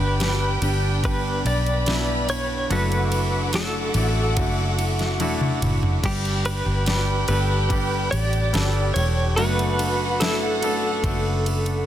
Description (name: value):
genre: pop ballad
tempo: 72 BPM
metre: 4/4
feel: straight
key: unclear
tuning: A4 = 436 Hz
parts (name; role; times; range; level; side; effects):
- direct-recorded clean electric guitar; melody; 0.0-11.9 s; G4 to D5; -27 LUFS; equal; tremolo, ping-pong delay
- dark studio violin section; second line; 0.0-11.8 s; F#4 to B5; -30 LUFS; right 1 dB; none
- clear concert grand piano; accompaniment; 0.0-11.9 s; G2 to A4; -28 LUFS; right 1 dB; none
- rich studio string section; sustained chords; 0.0-6.0 s; D4 to D6; -33 LUFS; left 2 dB; none
- fingerpicked steel-string acoustic guitar; arpeggios; 0.0-11.9 s; F#2 to B4; -33 LUFS; left 2 dB; ping-pong delay
- vintage muted fingered electric bass; bass; 0.0-11.8 s; E1 to B1; -24 LUFS; equal; none
- smooth R&B drum kit; drums; 0.2-11.9 s; crash cymbal, kick drum, ride cymbal, snare drum, toms; -28 LUFS; equal; none
room: light reverb, studio reverb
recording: dense, heavily limited modern master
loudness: -20 LUFS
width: side -11 dB against mid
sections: 0.0-6.0 A section; 6.0-11.9 A section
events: drum fill 5.2-6.0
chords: 0.0 G; 2.7 Dadd9/F#; 9.4 Bm7/F#